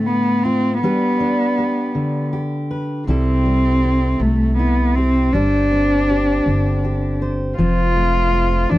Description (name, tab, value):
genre	acoustic folk duo or small band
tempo	53 BPM (dotted quarters)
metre	6/8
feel	straight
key	C major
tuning	A4 = 436 Hz
part	warm cello	melody	0.0-8.8 s	A3 to F4	-18 LUFS	equal	none
part	fingerpicked steel-string acoustic guitar	accompaniment	0.0-8.8 s	A2 to C5	-21 LUFS	left 1 dB	none
part	upright bass	bass	3.1-8.8 s	F1 to C2	-19 LUFS	equal	none
room	light reverb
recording	dry, close 1970s-style studio recording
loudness	-15 LUFS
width	side -16 dB against mid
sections	0.0-3.1 A section; 3.1-8.8 A section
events	none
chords	0.0 Dm7; 0.8 G; 3.1 C6; 5.3 Gsus4; 7.6 F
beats	| 0.81 1.94 | 3.07 4.20 | 5.33 6.46 | 7.59 8.72